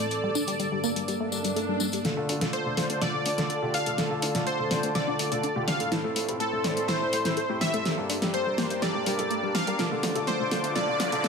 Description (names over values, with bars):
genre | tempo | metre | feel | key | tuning
progressive house | 124 BPM | 4/4 | straight | D minor | A4 = 440 Hz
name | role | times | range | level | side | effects
plucky unison lead | melody | 0.0-11.3 s | A4 to F5 | -30 LUFS | equal | analog chorus, tape echo
lush unison pad | sustained chords | 0.0-11.3 s | G2 to D6 | -32 LUFS | right 1 dB | chorus
tight sequenced synth | arpeggios | 0.0-11.3 s | G3 to A4 | -34 LUFS | left 1 dB | chorus, vintage 12-bit sampler grit, ping-pong delay
drifting glass-harmonics texture | texture | 0.0-2.1 s | D5 to E6 | -44 LUFS | right 4 dB | none
deep house drum kit | drums | 0.1-11.3 s | hi-hat, snare drum | -30 LUFS | equal | none
tambourine | percussion | 0.1-2.0 s | none | -36 LUFS | left 7 dB | none
swell and riser | sound effects | 1.3-2.0, 10.5-11.3 s | none | -34 LUFS | right 4 dB | none
warm grand piano | stabs | 2.0-11.3 s | G2 to D5 | -32 LUFS | left 1 dB | low-pass filter, ping-pong delay
plucky analog bass | bass | 2.3-11.2 s | D1 to A2 | -39 LUFS | equal | none
room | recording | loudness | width
moderate lush hall reverb, RT60 1.9 s | high-pass filter | -25 LUFS | side -5 dB against mid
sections
0.0-2.0 A section; 2.0-11.3 B section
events
filter sweep on analog synth pad 0.0-2.0; swell 1.3-2.0; build-up 2.0-11.3; drum fill 2.0-11.3; riser 10.5-11.3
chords
0.1 Gmadd9; 2.0 Dm; 5.9 Am; 7.9 Gmadd9; 9.8 Dm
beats
| 0.11 0.59 1.08 1.56 | 2.05 2.53 3.02 3.50 | 3.98 4.47 4.95 5.43 | 5.92 6.40 6.89 7.37 | 7.85 8.34 8.82 9.30 | 9.79 10.27 10.76 11.24